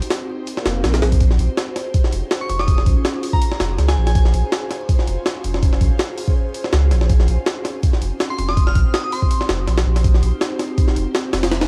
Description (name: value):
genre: drum and bass, jungle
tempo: 163 BPM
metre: 4/4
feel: swing 54% on 16ths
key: Bb dorian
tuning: A4 = 441 Hz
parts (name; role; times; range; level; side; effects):
- jungle sampler-style drum kit; drums; 0.0-11.7 s; hi-hat, kick drum, snare drum; -21 LUFS; equal; cassette tape
- swell; sound effects; 0.6-1.2 s; none; -32 LUFS; equal; none
- saturated sub bass; bass; 0.7-11.7 s; F1 to Db2; -20 LUFS; equal; none
- glassy synth bell; melody; 2.4-4.2, 8.3-9.4 s; Ab5 to F6; -30 LUFS; equal; chorus, phaser, vintage 12-bit sampler grit, cassette tape, dub echo
room: little or no reverb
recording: home recording on cassette, vinyl crackle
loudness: -18 LUFS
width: mono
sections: 0.0-11.7 A section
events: swell 0.6-1.2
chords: 0.0 Cm; 1.2 Bbm9; 7.1 Cm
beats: 0.10 0.47 0.84 | 1.21 1.58 1.94 2.31 | 2.68 3.05 3.42 3.79 | 4.15 4.52 4.89 5.26 | 5.62 5.99 6.36 6.73 | 7.10 7.47 7.83 8.20 | 8.57 8.94 9.31 9.67 | 10.04 10.41 10.78 11.15 | 11.52